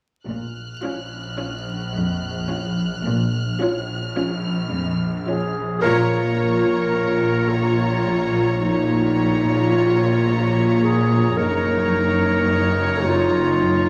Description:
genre	cinematic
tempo	108 BPM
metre	5/4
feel	straight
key	Bb minor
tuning	A4 = 440 Hz
part	rich studio cello section	bass	0.3-13.9 s	F2 to Bb2	-28 LUFS	equal	none
part	rich studio double bass section	bass	0.3-13.9 s	Gb1 to Bb1	-27 LUFS	equal	none
part	swarming drone	drone	1.0-13.9 s	Gb1 to Bb1	-29 LUFS	equal	built-in reverb
part	clear studio violin section	texture	0.3-5.5 s	F6 to Gb6	-35 LUFS	equal	none
part	rich studio viola section	accompaniment	0.8-13.9 s	Db4 to F4	-27 LUFS	equal	none
part	warm clarinet	second line	5.3-13.9 s	Eb4 to Bb4	-24 LUFS	equal	none
part	rich studio violin section	melody	5.8-13.9 s	Bb5	-34 LUFS	equal	none
part	clear studio violin section	second line	5.8-13.9 s	Db5	-29 LUFS	equal	none
part	warm studio cello section	riff	5.8-13.9 s	Gb2 to Bb2	-32 LUFS	equal	none
room	wet scoring stage reverb, RT60 2.0 s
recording	vinyl crackle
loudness	-20 LUFS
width	mono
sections	0.3-5.8 A section; 5.8-13.9 B section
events	band accent 5.8-6.4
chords	0.3 Bbm; 11.4 Gb6

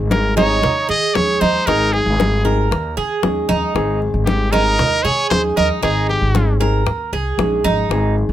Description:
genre	latin, Cuban son and guajira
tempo	115 BPM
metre	4/4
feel	straight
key	Ab major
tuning	A4 = 440 Hz
part	nylon-string guitar	accompaniment	0.0-8.3 s	Eb3 to Ab4	-22 LUFS	left 3 dB	none
part	upright bass	bass	0.0-8.3 s	Ab1 to Eb3	-20 LUFS	equal	none
part	brilliant trumpet	melody	0.1-6.6 s	G4 to Eb5	-18 LUFS	equal	none
part	bongos	percussion	0.1-8.2 s	none	-23 LUFS	left 8 dB	none
part	congas	percussion	0.1-8.3 s	none	-22 LUFS	left 2 dB	none
part	Cuban tres	arpeggios	0.4-8.1 s	Eb4 to Bb4	-20 LUFS	right 7 dB	none
room	little or no reverb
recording	close, detailed microphones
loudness	-14 LUFS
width	side -12 dB against mid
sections	0.0-8.3 A section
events	none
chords	0.0 Abmaj7; 0.6 Eb7sus4; 1.7 Abmaj9; 2.7 Eb7sus4; 3.7 Abmaj7; 4.8 Eb7sus4; 5.8 Abmaj9; 6.9 Eb7sus4

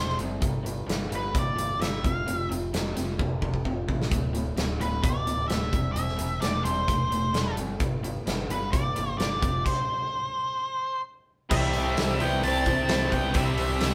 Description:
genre	classic rock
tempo	130 BPM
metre	4/4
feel	straight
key	unclear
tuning	A4 = 440 Hz
part	octave-fuzz lead guitar	melody	0.0-13.9 s	B4 to A5	-32 LUFS	equal	distortion
part	raw garage guitar	riff	0.0-13.9 s	D2 to C5	-39 LUFS	equal	overdrive, spring reverb
part	raw garage guitar	riff	0.0-13.9 s	D2 to C5	-36 LUFS	equal	overdrive
part	picked electric bass	bass	0.0-13.9 s	D1 to C2	-35 LUFS	equal	none
part	big rock drum kit	drums	0.1-13.9 s	crash cymbal, hi-hat, kick drum, snare drum	-31 LUFS	equal	none
part	octave-fuzz lead guitar	second line	11.5-13.9 s	G3 to C4	-35 LUFS	equal	distortion
part	clear concert grand piano	accompaniment	11.5-13.9 s	C4 to C5	-38 LUFS	equal	none
part	picked plugged-in steel-string acoustic guitar	accompaniment	11.5-13.9 s	none	barely audible	none	none
part	cranked stack guitar	riff	11.5-13.9 s	C3 to C4	-38 LUFS	equal	none
room	moderate studio reverb, RT60 0.7 s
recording	band playing live in one room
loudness	-27 LUFS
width	mono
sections	0.0-11.5 A section; 11.5-13.9 B section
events	drum fill 3.2-4.1; stop 9.7-11.5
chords	0.4 G5; 2.0 F5; 4.1 D5; 5.7 C/E; 7.8 G5; 9.4 F5; 11.5 C

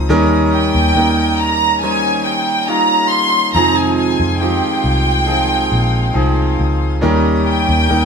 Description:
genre	pop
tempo	69 BPM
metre	4/4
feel	straight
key	unclear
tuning	A4 = 445 Hz
part	clear concert grand piano	accompaniment	0.0-8.1 s	Eb3 to C5	-18 LUFS	equal	none
part	rich studio string section	sustained chords	0.0-8.1 s	G3 to Eb6	-28 LUFS	left 4 dB	none
part	fingerpicked steel-string acoustic guitar	arpeggios	0.0-8.1 s	F2 to G4	-23 LUFS	right 7 dB	none
part	vintage muted fingered electric bass	bass	0.0-8.1 s	Bb1 to F2	-17 LUFS	left 1 dB	none
part	warm studio violin section	melody	0.5-8.1 s	G5 to C6	-16 LUFS	right 1 dB	none
room	wet stone room reverb, RT60 1.1 s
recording	band playing live in one room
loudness	-12 LUFS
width	side -6 dB against mid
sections	0.0-8.1 A section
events	none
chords	0.1 Eb7; 3.6 Fm7; 7.0 Eb7

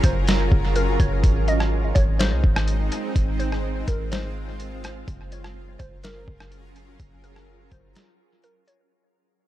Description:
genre	hip hop, atmospheric cloud-rap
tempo	125 BPM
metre	4/4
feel	half-time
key	Gb lydian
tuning	A4 = 440 Hz
part	glassy wavetable pluck	melody	0.0-8.9 s	Bb4 to Eb5	-31 LUFS	left 1 dB	chorus, tape echo
part	shimmering ambient pad	sustained chords	0.0-8.9 s	Gb3 to Bb4	-29 LUFS	right 1 dB	chorus, built-in reverb, sidechain pumping
part	warm 808-style bass	bass	0.0-7.9 s	Gb1 to C2	-24 LUFS	equal	none
part	lo-fi sampler-style drum kit	drums	0.0-8.8 s	hi-hat, kick drum, rim click, snare drum	-22 LUFS	equal	overdrive
room	little or no reverb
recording	echo-heavy mix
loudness	-19 LUFS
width	side -14 dB against mid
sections	0.0-8.9 A section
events	fade-out 0.0-8.9; break 8.0-8.9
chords	0.0 Gbmaj7; 1.2 Ab; 5.1 Gbmaj7

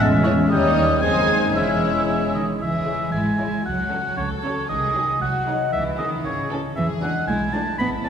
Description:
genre	cinematic, playful, whimsical film cue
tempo	115 BPM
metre	2/4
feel	straight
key	C# minor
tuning	A4 = 442 Hz
part	mellow clarinet	second line	0.0-2.3 s	B#3 to C#4	-30 LUFS	left 2 dB	none
part	mellow hollow silver concert flute	second line	0.0-2.3 s	C#6 to G#6	-24 LUFS	equal	none
part	warm oboe	second line	0.0-8.1 s	C#5 to B5	-25 LUFS	right 1 dB	none
part	warm studio violin section	second line	0.0-8.1 s	D#4 to G#5	-32 LUFS	left 3 dB	none
part	warm bassoon	accompaniment	0.0-2.3 s	G3 to G#3	-29 LUFS	right 2 dB	none
part	dark French horn section	sustained chords	0.0-2.3 s	G3 to C#4	-27 LUFS	left 2 dB	none
part	concert harp	arpeggios	0.0-8.1 s	E2 to D#5	-30 LUFS	left 5 dB	none
part	dark studio cello section	bass	0.0-8.1 s	D#2 to B3	-26 LUFS	right 1 dB	none
part	dark studio double bass section	bass	0.0-8.1 s	E1 to E2	-27 LUFS	right 1 dB	none
part	dark studio violin section	melody	0.2-8.1 s	G#4 to C#5	-30 LUFS	left 3 dB	none
part	warm studio viola section	accompaniment	0.2-8.1 s	E3 to E4	-29 LUFS	right 2 dB	none
room	wet concert hall reverb, RT60 2.0 s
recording	recorded in a church or concert hall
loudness	-19 LUFS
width	side -8 dB against mid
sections	0.0-2.6 A section; 2.6-8.1 A section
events	none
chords	0.5 D#7; 1.0 G#7/F#; 1.6 C#m/E; 2.6 C#m; 3.7 F#m/C#; 4.7 G#7/B#; 5.7 C#m; 6.8 E7

